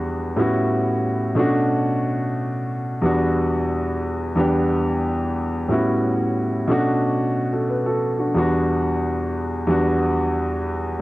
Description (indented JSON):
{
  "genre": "soul",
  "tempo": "90 BPM",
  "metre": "4/4",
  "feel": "straight",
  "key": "E dorian",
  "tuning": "A4 = 440 Hz",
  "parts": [
    { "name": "warm grand piano", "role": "solo", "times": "0.0-11.0 s", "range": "E2 to B4", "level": "-19 LUFS", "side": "equal", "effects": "cassette tape" }
  ],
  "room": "moderate studio reverb, RT60 0.6 s",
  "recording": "home recording on cassette",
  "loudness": "-19 LUFS",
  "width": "side -18 dB against mid",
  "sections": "0.0-11.0 A section",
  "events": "none",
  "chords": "0.4 A13; 1.4 Bm7; 3.0 Em9; 5.7 A13; 6.7 Bm7; 8.4 Em9",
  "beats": "| 0.38 1.05 1.71 2.38 | 3.04 3.71 4.38 5.04 | 5.71 6.37 7.04 7.70 | 8.37 9.03 9.69 10.36"
}